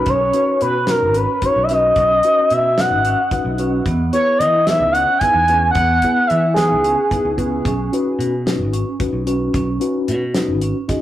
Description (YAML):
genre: progressive instrumental, band music in an uneven meter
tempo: 222 BPM (eighths)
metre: 7/8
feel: straight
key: B major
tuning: A4 = 440 Hz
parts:
  - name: expressive synth lead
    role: melody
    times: 0.0-7.3 s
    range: G#4 to G#5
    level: -15 LUFS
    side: equal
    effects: chorus, digital delay
  - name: mellow tine electric piano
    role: accompaniment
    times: 0.0-11.0 s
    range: B3 to D#5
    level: -24 LUFS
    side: left 2 dB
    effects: medium stereo tremolo
  - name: vibraphone with medium mallets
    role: arpeggios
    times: 0.1-11.0 s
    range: B3 to F#4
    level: -24 LUFS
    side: right 2 dB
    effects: none
  - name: picked electric bass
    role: bass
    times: 0.1-10.7 s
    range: G#1 to E3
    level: -23 LUFS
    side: equal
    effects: none
  - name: damped 70s drum kit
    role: drums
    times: 0.1-11.0 s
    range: hi-hat, kick drum, snare drum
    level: -24 LUFS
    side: equal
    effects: none
room: wet studio reverb, RT60 0.5 s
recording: rough rehearsal-room recording, warm saturation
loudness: -14 LUFS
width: side -13 dB against mid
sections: 0.1-11.0 A section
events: tine electric piano fill 10.6-11.0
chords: 0.1 Badd9; 3.9 E; 7.7 Badd9